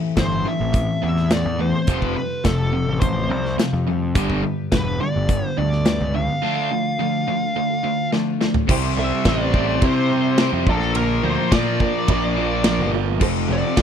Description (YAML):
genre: classic rock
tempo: 106 BPM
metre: 4/4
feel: straight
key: C major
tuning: A4 = 440 Hz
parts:
  - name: fingerpicked twelve-string acoustic guitar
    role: accompaniment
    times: 0.0-13.8 s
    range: G2 to C5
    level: -30 LUFS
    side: left 10 dB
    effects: none
  - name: distorted electric guitar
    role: riff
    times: 0.0-13.8 s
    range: F2 to D4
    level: -25 LUFS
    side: left 13 dB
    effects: distortion
  - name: overdriven semi-hollow guitar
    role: riff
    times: 0.0-13.8 s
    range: F2 to E4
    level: -26 LUFS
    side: right 14 dB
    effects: none
  - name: fuzz lead guitar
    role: melody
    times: 0.2-13.8 s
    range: A4 to F5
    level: -25 LUFS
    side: equal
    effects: wah, distortion
  - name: fuzz picked electric bass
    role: bass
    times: 0.2-13.8 s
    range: E1 to C3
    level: -23 LUFS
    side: equal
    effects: overdrive
  - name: big rock drum kit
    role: drums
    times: 0.2-13.8 s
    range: crash cymbal, hi-hat, kick drum, ride cymbal, snare drum, toms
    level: -22 LUFS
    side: equal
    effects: none
  - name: honky-tonk upright piano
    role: accompaniment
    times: 8.7-13.8 s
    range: E4 to F5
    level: -31 LUFS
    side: right 12 dB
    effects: none
room: little or no reverb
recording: dry, close 1970s-style studio recording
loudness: -18 LUFS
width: side -8 dB against mid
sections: 0.0-8.7 A section; 8.7-13.8 B section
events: drum fill 8.1-8.7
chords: 0.0 Am; 1.9 Fadd9; 4.2 G; 6.4 Dm; 8.7 C; 10.7 Bb; 13.2 F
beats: 0.18 0.75 1.32 | 1.89 2.46 3.02 3.59 | 4.16 4.73 5.30 5.86 | 6.43 7.00 7.56 8.13 | 8.70 9.26 9.82 10.39 | 10.95 11.52 12.08 12.65 | 13.21 13.77